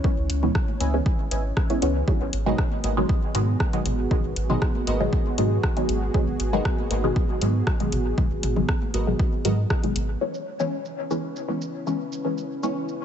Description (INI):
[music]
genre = dub techno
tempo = 118 BPM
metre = 4/4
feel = straight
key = C# minor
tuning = A4 = 440 Hz
[part]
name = dark analog pad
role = sustained chords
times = 0.0-13.0 s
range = B3 to C#5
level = -32 LUFS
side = right 2 dB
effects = chorus, sidechain pumping
[part]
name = filtered dub chord stab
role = stabs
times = 0.0-12.8 s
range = B2 to C#4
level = -27 LUFS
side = left 1 dB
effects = chorus, phaser, sidechain pumping, dub echo
[part]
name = electronic kick drum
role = drums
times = 0.0-9.8 s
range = none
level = -24 LUFS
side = equal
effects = overdrive, small room ambience
[part]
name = soft dub sub bass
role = bass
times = 0.2-10.2 s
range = G#1 to G#2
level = -25 LUFS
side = equal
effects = sidechain pumping
[part]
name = deep house drum kit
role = drums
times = 0.3-13.0 s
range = hi-hat, rim click, shaker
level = -32 LUFS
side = equal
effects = overdrive, low-pass filter on hats, small room ambience, low-pass filter on snare, low-pass filter on perc, dub echo
[part]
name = electronic toms and congas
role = percussion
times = 0.4-9.0 s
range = none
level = -36 LUFS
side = left 4 dB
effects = overdrive, sidechain pumping on perc, small room ambience, sidechain pumping on toms, dub echo
[part]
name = wavetable chord stab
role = riff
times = 0.8-9.6 s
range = F#4 to G#5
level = -35 LUFS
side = right 3 dB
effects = sidechain pumping, dub echo
[sound]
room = light reverb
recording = nothing above 8.0 kHz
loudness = -22 LUFS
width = side -9 dB against mid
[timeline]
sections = 0.0-10.2 A section; 10.2-13.0 B section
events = filter sweep on synth stab 0.0-10.2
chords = 0.0 C#m7; 2.1 G#m7; 10.2 C#m7